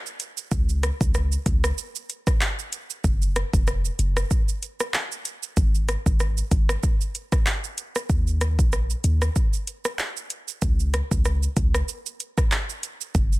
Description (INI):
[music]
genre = dancehall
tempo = 95 BPM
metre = 4/4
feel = swing 56% on 16ths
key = unclear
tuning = A4 = 440 Hz
[part]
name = afro-pop drum kit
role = drums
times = 0.1-13.4 s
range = handclaps, hi-hat, kick drum, rim click, shaker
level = -23 LUFS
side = equal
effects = none
[part]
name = warm 808-style bass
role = bass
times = 0.5-13.4 s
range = E#1 to D#2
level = -23 LUFS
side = equal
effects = none
[sound]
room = digital ambience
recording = dense, heavily limited modern master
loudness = -22 LUFS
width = side -20 dB against mid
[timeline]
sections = 0.0-13.4 A section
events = none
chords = none